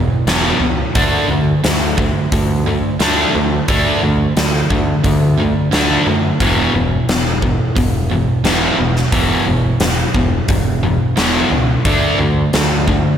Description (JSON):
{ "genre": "hard rock", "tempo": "88 BPM", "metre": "4/4", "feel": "straight", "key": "unclear", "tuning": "A4 = 440 Hz", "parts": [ { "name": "overdriven electric guitar", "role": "riff", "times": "0.0-13.2 s", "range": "E2 to D4", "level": "-17 LUFS", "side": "left 4 dB", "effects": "slapback echo" }, { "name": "sludgy distorted guitar", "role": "riff", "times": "0.0-13.2 s", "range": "E2 to D4", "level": "-19 LUFS", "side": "right 8 dB", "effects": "overdrive" }, { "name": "growling picked electric bass", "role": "bass", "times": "0.0-13.0 s", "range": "E1 to F#2", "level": "-21 LUFS", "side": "equal", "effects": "overdrive" }, { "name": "huge arena drum kit", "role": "drums", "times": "0.3-13.0 s", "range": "hi-hat, kick drum, snare drum", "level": "-18 LUFS", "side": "equal", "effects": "none" } ], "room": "light reverb, small room ambience", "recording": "none", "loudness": "-13 LUFS", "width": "side -9 dB against mid", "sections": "0.0-13.2 A section", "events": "none", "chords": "0.0 E5; 1.0 D5; 6.4 E5; 11.9 D5", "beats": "0.28 | 0.95 1.64 2.31 3.00 | 3.68 4.36 5.04 5.72 | 6.40 7.08 7.76 8.45 | 9.13 9.81 10.49 11.17 | 11.85 12.54" }